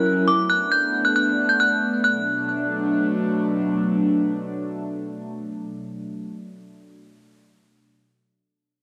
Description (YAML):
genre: hip hop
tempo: 136 BPM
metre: 4/4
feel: half-time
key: B minor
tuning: A4 = 439 Hz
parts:
  - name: metallic FM bell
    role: melody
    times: 0.0-3.3 s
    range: D6 to G6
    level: -23 LUFS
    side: equal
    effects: chorus, low-pass filter, cassette tape, tape echo
  - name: warbly tape-like pad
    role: sustained chords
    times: 0.0-6.3 s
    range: B2 to A#4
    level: -26 LUFS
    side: equal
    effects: chorus, built-in reverb, phaser
room: light reverb, digital ambience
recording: home recording on cassette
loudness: -22 LUFS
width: mono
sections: 0.0-2.0 A section; 2.0-5.6 B section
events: none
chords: 0.3 Bm7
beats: | 0.28 0.72 1.16 1.60 | 2.04 2.48 2.92 3.36 | 3.81 4.25 4.69 5.13